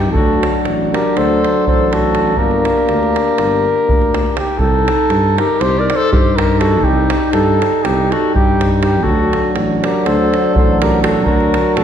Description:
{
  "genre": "balkan folk, Balkan brass band",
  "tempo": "243 BPM (eighths)",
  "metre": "9/8",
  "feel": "straight",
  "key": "unclear",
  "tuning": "A4 = 440 Hz",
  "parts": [
    { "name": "mellow flugelhorn", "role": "melody", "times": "0.0-11.8 s", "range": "G4 to D5", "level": "-17 LUFS", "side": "equal", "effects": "none" },
    { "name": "clear clarinet", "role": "second line", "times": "0.0-11.8 s", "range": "Eb4 to Bb4", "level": "-21 LUFS", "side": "left 3 dB", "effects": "none" },
    { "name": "warm euphonium", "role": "accompaniment", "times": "0.0-11.8 s", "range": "D4 to Eb4", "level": "-20 LUFS", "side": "left 2 dB", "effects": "none" },
    { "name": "dark tuba", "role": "bass", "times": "0.0-11.8 s", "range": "G1 to G2", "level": "-18 LUFS", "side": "equal", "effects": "none" },
    { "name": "clear euphonium", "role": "accompaniment", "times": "0.1-11.8 s", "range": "F#3 to Bb3", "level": "-22 LUFS", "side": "right 5 dB", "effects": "none" },
    { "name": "davul", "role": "percussion", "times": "0.1-11.8 s", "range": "none", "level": "-19 LUFS", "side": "right 1 dB", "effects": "none" }
  ],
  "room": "wet scoring stage reverb, RT60 2.0 s",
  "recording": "heard from further back in the room",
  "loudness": "-12 LUFS",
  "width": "side -9 dB against mid",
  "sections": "0.0-4.6 A section; 4.6-11.8 A section",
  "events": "none",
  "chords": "0.1 D; 2.4 Gm; 4.6 Cm; 9.0 D",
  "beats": "| 0.14 0.39 0.64 0.89 1.13 1.38 1.63 1.88 2.12 | 2.37 2.62 2.87 3.12 3.36 3.61 3.86 4.10 4.35 | 4.60 4.85 5.09 5.34 5.59 5.83 6.08 6.33 6.58 | 6.82 7.07 7.32 7.56 7.81 8.05 8.30 8.55 8.79 | 9.04 9.29 9.54 9.78 10.03 10.28 10.52 10.77 11.02 | 11.26 11.51 11.76"
}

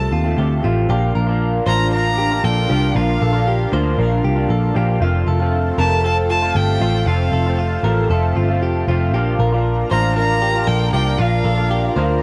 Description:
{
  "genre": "indie pop",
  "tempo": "116 BPM",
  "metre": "4/4",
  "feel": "straight",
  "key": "Bb major",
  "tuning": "A4 = 440 Hz",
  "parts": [
    { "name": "bright violin", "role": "melody", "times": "0.0-12.0 s", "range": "F5 to Bb5", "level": "-24 LUFS", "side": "equal", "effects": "cassette tape" },
    { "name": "electric guitar through a small old amp", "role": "accompaniment", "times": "0.0-12.2 s", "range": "F2 to F4", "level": "-25 LUFS", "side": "equal", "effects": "analog chorus, cassette tape" },
    { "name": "direct-recorded clean electric guitar", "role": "arpeggios", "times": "0.0-12.2 s", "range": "F4 to C5", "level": "-27 LUFS", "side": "equal", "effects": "cassette tape" },
    { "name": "vintage muted picked electric bass", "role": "bass", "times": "0.0-12.2 s", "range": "F1 to Eb2", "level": "-20 LUFS", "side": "equal", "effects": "none" },
    { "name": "lush unison pad", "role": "sustained chords", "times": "1.4-12.2 s", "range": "D4 to Bb5", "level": "-28 LUFS", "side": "equal", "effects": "chorus, phaser, cassette tape" }
  ],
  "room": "moderate booth ambience, RT60 0.2 s",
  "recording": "home recording on cassette",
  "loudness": "-17 LUFS",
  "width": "mono",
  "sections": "0.9-12.2 A section",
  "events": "none",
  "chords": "0.0 F; 0.9 Bb; 5.0 F; 9.1 Bb",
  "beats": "0.38 | 0.89 1.41 1.92 2.44 | 2.95 3.47 3.98 4.50 | 5.01 5.53 6.04 6.56 | 7.07 7.59 8.10 8.62 | 9.13 9.65 10.16 10.68 | 11.20 11.71"
}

